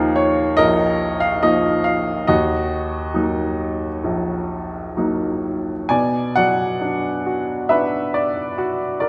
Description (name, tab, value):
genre	classical, lyrical solo piano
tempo	64-72 BPM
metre	4/4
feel	rubato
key	unclear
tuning	A4 = 440 Hz
part	clear upright piano	solo	0.0-9.1 s	Bb1 to Ab5	-20 LUFS	equal	none
room	wet concert hall reverb, RT60 1.9 s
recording	none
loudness	-20 LUFS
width	mono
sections	0.0-5.9 A section; 5.9-9.1 B section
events	none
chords	0.0 Ebsus2; 2.3 Ebm; 5.9 Bm